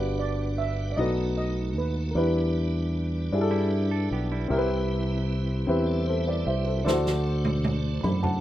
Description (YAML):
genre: slow gospel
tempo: 51 BPM (dotted quarters)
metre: 6/8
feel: straight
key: unclear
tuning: A4 = 440 Hz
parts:
  - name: steel pan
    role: melody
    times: 0.0-3.3 s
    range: Bb4 to E5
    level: -34 LUFS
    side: right 6 dB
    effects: none
  - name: dark upright piano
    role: accompaniment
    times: 0.0-8.4 s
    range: G2 to B5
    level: -28 LUFS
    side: left 2 dB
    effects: none
  - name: tonewheel organ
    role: sustained chords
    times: 0.0-8.4 s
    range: G3 to F#5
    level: -35 LUFS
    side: right 3 dB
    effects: fast rotary speaker, chorus vibrato
  - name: fingered electric bass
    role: bass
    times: 0.0-8.4 s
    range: G1 to G2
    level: -27 LUFS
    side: equal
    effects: none
  - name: semi-hollow electric guitar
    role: second line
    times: 3.5-4.7 s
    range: G3 to A4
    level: -37 LUFS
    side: right 7 dB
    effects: none
  - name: natural country drum kit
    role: drums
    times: 6.9-8.4 s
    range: snare drum, toms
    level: -29 LUFS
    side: right 1 dB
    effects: none
room: little or no reverb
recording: rough home demo mix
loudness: -24 LUFS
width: side -13 dB against mid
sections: 0.0-8.4 A section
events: drum fill 6.9-8.4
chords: 0.0 Gmaj7; 1.0 B7; 2.2 Em7; 4.5 Cmaj7; 6.9 D7